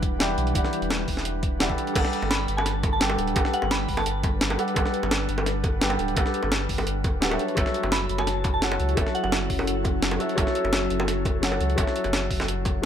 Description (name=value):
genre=liquid drum and bass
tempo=171 BPM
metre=4/4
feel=straight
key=unclear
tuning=A4 = 439 Hz
part: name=felt-muted upright piano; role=accompaniment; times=0.0-12.9 s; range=E3 to G5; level=-28 LUFS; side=equal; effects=ping-pong delay
part: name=ethereal airy pad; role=sustained chords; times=0.0-12.9 s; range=F#3 to B4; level=-32 LUFS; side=equal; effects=ensemble chorus, built-in reverb, sidechain pumping
part: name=warm sub bass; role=bass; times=0.0-12.9 s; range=D1 to C#2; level=-29 LUFS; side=equal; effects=none
part: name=electronic kick drum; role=drums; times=0.0-12.7 s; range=none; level=-27 LUFS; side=equal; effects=overdrive
part: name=jungle sampler-style drum kit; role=drums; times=0.0-12.7 s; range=crash cymbal, hi-hat, snare drum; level=-28 LUFS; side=equal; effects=none
part: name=bongos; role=percussion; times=2.0-12.7 s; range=none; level=-32 LUFS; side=right 2 dB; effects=none
part: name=soft synth bell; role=melody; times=2.3-4.2, 7.9-9.5 s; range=F#5 to B5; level=-31 LUFS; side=equal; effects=chorus, ping-pong delay
room=light reverb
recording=none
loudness=-22 LUFS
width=side -9 dB against mid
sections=0.0-12.9 A section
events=none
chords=0.0 Em7; 1.8 Gmaj7; 7.4 F#m7